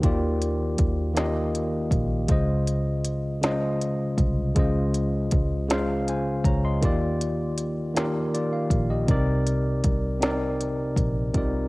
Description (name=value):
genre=slow six-eight R&B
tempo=53 BPM (dotted quarters)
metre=6/8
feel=straight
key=C minor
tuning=A4 = 439 Hz
part: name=tine electric piano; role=accompaniment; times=0.0-11.7 s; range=C3 to C6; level=-25 LUFS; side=equal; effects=medium stereo tremolo
part: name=vintage muted fingered electric bass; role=bass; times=0.0-11.7 s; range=Bb1 to Eb2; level=-28 LUFS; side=equal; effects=none
part: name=organic electronic drum kit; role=drums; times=0.0-11.5 s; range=hi-hat, kick drum, snare drum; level=-25 LUFS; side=equal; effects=cassette tape
room=little or no reverb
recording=home recording on cassette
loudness=-22 LUFS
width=side -22 dB against mid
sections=0.0-11.4 A section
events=none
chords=0.0 Ebmaj9; 2.3 Dbmaj9; 6.8 Ebmaj9; 9.1 Cm9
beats=| 0.03 1.16 | 2.30 3.43 | 4.56 5.69 | 6.82 7.96 | 9.09 10.22 | 11.35